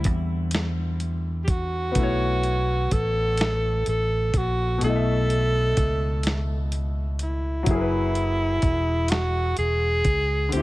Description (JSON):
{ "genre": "slow six-eight R&B", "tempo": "42 BPM (dotted quarters)", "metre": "6/8", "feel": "straight", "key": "B minor", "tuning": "A4 = 440 Hz", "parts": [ { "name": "breathy tenor saxophone", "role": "melody", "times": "0.0-10.6 s", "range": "E4 to A4", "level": "-26 LUFS", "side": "right 1 dB", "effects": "none" }, { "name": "clear grand piano", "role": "accompaniment", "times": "0.0-10.6 s", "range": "B2 to E5", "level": "-31 LUFS", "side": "left 3 dB", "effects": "none" }, { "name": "fingered electric bass", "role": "bass", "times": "0.0-10.6 s", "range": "E1 to E2", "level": "-25 LUFS", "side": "equal", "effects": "none" }, { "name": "dusty soul sampler-style drum kit", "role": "drums", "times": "0.0-10.6 s", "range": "hi-hat, kick drum, snare drum", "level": "-25 LUFS", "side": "equal", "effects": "none" } ], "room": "small room ambience", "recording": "none", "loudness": "-21 LUFS", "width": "side -18 dB against mid", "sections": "0.0-10.6 A section", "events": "none", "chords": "0.0 D9sus4; 2.0 B9sus4; 7.7 F#9sus4" }